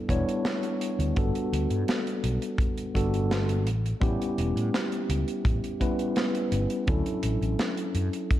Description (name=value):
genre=vaporwave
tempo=84 BPM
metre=4/4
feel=straight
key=unclear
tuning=A4 = 441 Hz
part: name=mellow tine electric piano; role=accompaniment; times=0.0-8.4 s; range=F#3 to C#5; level=-28 LUFS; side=equal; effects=medium stereo tremolo, wide subtle chorus, vintage 12-bit sampler grit, tape echo
part: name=fretless electric bass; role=bass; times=0.1-8.1 s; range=E1 to A2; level=-27 LUFS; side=equal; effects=tube saturation
part: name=kick drum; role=drums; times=0.1-8.4 s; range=none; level=-28 LUFS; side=equal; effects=none
part: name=modern studio drum kit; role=drums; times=0.1-8.4 s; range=hi-hat, snare drum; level=-33 LUFS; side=right 1 dB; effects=gated reverb
room=light reverb, studio ambience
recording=cassette tape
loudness=-25 LUFS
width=side -13 dB against mid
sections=0.0-8.4 A section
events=none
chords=0.0 Em7; 1.2 Gmaj9; 3.7 A9; 6.9 Dmaj9